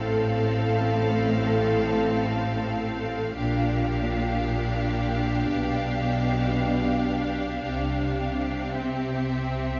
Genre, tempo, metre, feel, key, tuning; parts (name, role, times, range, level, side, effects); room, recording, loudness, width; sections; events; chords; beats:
classical, slow romantic movement for string orchestra; free time; F major; A4 = 440 Hz
warm studio violin section; melody; 0.0-9.8 s; E5 to F5; -36 LUFS; equal
rich studio violin section; second line; 0.0-9.8 s; G4 to A4; -33 LUFS; equal
rich studio viola section; accompaniment; 0.0-9.8 s; C4 to D4; -33 LUFS; equal
rich studio cello section; bass; 0.0-9.8 s; A2 to C3; -31 LUFS; equal
rich studio double bass section; bass; 0.0-9.8 s; A1 to C2; -32 LUFS; equal
moderate scoring stage reverb, RT60 2.0 s; dark, warm production, nothing above 7.5 kHz; -26 LUFS; mono
0.0-9.8 A section
0.0 F/A; 3.4 Gm7/Bb; 5.5 G7/B; 7.7 C
free time